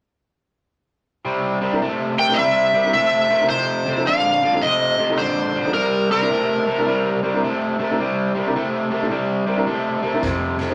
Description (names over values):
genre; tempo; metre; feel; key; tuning
electric blues shuffle; 107 BPM; 4/4; swing 63% on 8ths; C mixolydian; A4 = 441 Hz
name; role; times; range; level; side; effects
crunchy overdriven guitar; riff; 1.3-10.7 s; F2 to A3; -24 LUFS; equal; spring reverb
warm upright piano; accompaniment; 1.6-10.7 s; C3 to Bb4; -28 LUFS; equal; none
overdriven slide guitar; melody; 2.2-7.2 s; Bb4 to G5; -20 LUFS; equal; none
vintage muted fingered electric bass; bass; 10.2-10.7 s; F1; -30 LUFS; equal; none
raw garage drum kit; drums; 10.2-10.7 s; hi-hat, kick drum, snare drum; -32 LUFS; equal; none
room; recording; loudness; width
moderate studio reverb, RT60 0.7 s; none; -20 LUFS; mono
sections
1.3-10.7 A section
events
none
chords
1.3 C7; 3.5 F7; 5.7 C7; 10.2 F5